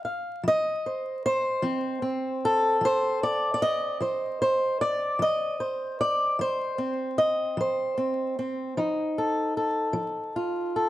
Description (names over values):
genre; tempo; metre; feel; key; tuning
acoustic country blues, solo or duo; 50 BPM (dotted quarters); 12/8; straight; unclear; A4 = 440 Hz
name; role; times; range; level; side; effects
fingerpicked swing-style acoustic guitar; solo; 0.0-10.9 s; F3 to F5; -24 LUFS; equal; none
room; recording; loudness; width
moderate studio reverb, RT60 0.9 s; dark, warm production, vinyl crackle; -24 LUFS; side -14 dB against mid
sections
0.0-10.9 A section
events
none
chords
0.0 F7